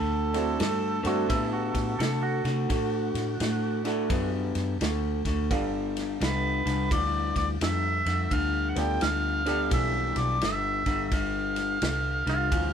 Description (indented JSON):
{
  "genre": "electric blues shuffle",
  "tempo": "86 BPM",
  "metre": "4/4",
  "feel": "swing 64% on 8ths",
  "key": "unclear",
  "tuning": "A4 = 445 Hz",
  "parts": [
    { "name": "mellow harmonica", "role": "melody", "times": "0.0-12.7 s", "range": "A4 to G5", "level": "-30 LUFS", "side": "right 1 dB", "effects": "overdrive" },
    { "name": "electric guitar through a small old amp", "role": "riff", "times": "0.0-12.7 s", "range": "G2 to B3", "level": "-30 LUFS", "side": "left 3 dB", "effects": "none" },
    { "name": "vintage muted fingered electric bass", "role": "bass", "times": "0.0-12.7 s", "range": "G1 to C3", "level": "-31 LUFS", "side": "equal", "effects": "none" },
    { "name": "bright upright piano", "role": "accompaniment", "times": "0.3-10.4 s", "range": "B3 to F5", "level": "-33 LUFS", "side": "right 5 dB", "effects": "none" },
    { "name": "warm soul drum kit", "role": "drums", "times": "0.3-12.7 s", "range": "kick drum, ride cymbal, snare drum", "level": "-33 LUFS", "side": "equal", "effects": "none" },
    { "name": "clean lap steel guitar", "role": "second line", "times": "1.1-4.3, 12.3-12.7 s", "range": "E4 to A4", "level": "-34 LUFS", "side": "right 2 dB", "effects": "none" }
  ],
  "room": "moderate studio reverb, RT60 0.9 s",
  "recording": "band playing live in one room",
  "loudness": "-25 LUFS",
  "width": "side -8 dB against mid",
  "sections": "0.0-12.7 A section",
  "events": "none",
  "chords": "0.0 D7; 5.5 G7"
}